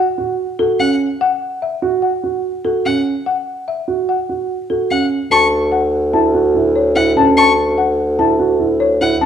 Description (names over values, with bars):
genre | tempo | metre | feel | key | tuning
classical, minimalist pattern music | 146 BPM | 5/4 | straight | unclear | A4 = 440 Hz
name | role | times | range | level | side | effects
folk marimba with medium mallets | melody | 0.0-9.3 s | A4 to A5 | -18 LUFS | left 6 dB | none
dark concert grand piano | arpeggios | 0.0-9.3 s | C#4 to F#4 | -17 LUFS | right 6 dB | none
rich violin | arpeggios | 0.8-9.2 s | F#5 to C#6 | -18 LUFS | left 2 dB | none
mellow bassoon | bass | 5.3-9.3 s | D2 | -15 LUFS | equal | none
room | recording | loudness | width
wet large studio reverb, RT60 1.2 s | heard from further back in the room | -13 LUFS | side -8 dB against mid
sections
0.0-5.3 A section; 5.3-9.3 A section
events
none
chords
0.0 F#5; 5.3 Dmaj7